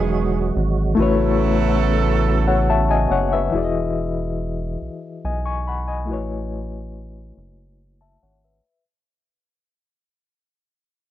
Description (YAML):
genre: slow six-eight R&B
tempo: 47 BPM (dotted quarters)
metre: 6/8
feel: straight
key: unclear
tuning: A4 = 440 Hz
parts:
  - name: reed electric piano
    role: accompaniment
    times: 0.0-8.8 s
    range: E3 to C#6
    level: -22 LUFS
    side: left 5 dB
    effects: overdrive, fast tremolo
  - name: percussive tonewheel organ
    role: sustained chords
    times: 0.0-3.5 s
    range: C#3 to F#4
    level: -25 LUFS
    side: right 6 dB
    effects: overdrive, chorus vibrato, slow rotary speaker
  - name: clear horn section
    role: stabs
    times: 0.0-3.1 s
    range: D#3 to A4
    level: -25 LUFS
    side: right 7 dB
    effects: none
  - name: rubbery square bass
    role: bass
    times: 0.0-8.6 s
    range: E1 to B1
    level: -22 LUFS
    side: right 1 dB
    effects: none
room: digital ambience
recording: dry, close 1970s-style studio recording, low-pass filter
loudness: -18 LUFS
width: side -12 dB against mid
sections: 0.0-3.5 A section; 3.5-8.6 B section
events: fade-out 3.5-8.6; filter sweep 3.5-8.6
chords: 0.0 Emaj9; 1.0 A69; 3.5 Emaj9; 6.1 A69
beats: | 0.97 2.25 | 3.53 4.80 | 6.08 7.36